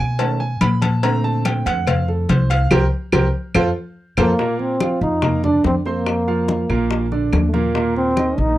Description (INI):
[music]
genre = Afro-Cuban jazz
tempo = 143 BPM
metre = 4/4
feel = straight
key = Bb major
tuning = A4 = 441 Hz
[part]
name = warm concert grand piano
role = accompaniment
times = 0.0-8.5 s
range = Bb2 to C6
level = -22 LUFS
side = right 4 dB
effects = none
[part]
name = upright bass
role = bass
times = 0.0-8.6 s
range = Bb1 to B2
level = -20 LUFS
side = equal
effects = none
[part]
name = congas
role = percussion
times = 0.2-8.6 s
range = none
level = -23 LUFS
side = left 3 dB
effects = none
[part]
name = cowbell and bongos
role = percussion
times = 0.2-8.6 s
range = none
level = -27 LUFS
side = left 8 dB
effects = none
[part]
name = claves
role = percussion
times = 0.6-8.4 s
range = none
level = -28 LUFS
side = right 2 dB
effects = none
[part]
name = breathy trombone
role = melody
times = 4.2-8.6 s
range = A3 to Eb4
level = -20 LUFS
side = equal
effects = none
[sound]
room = light reverb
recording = dry, close 1970s-style studio recording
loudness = -16 LUFS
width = side -15 dB against mid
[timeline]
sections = 0.0-4.4 A section; 4.4-8.6 B section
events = grand piano solo 0.0-4.4; band accent 2.7-4.4; drum fill 3.5-4.4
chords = 0.0 B9; 1.0 Bbmaj9; 2.7 C5; 3.5 F; 4.4 Bbadd9; 6.1 Fsus4; 6.9 Bb; 7.8 Eb5